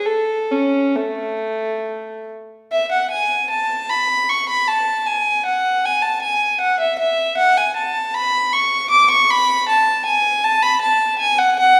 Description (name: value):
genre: classical, baroque-style suite movement for unaccompanied violin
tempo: 77 BPM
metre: 3/4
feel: rubato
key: A major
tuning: A4 = 441 Hz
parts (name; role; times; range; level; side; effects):
- rich violin; solo; 0.0-11.8 s; A3 to D6; -18 LUFS; equal; none
room: wet recital hall reverb, RT60 1.4 s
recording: heard from further back in the room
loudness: -18 LUFS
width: mono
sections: 0.0-2.7 A section; 2.7-11.8 B section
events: none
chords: none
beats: | 0.07 0.96 1.85 | 2.71 3.51 4.29 | 5.07 5.85 6.62 | 7.38 8.15 8.91 | 9.68 10.44 11.21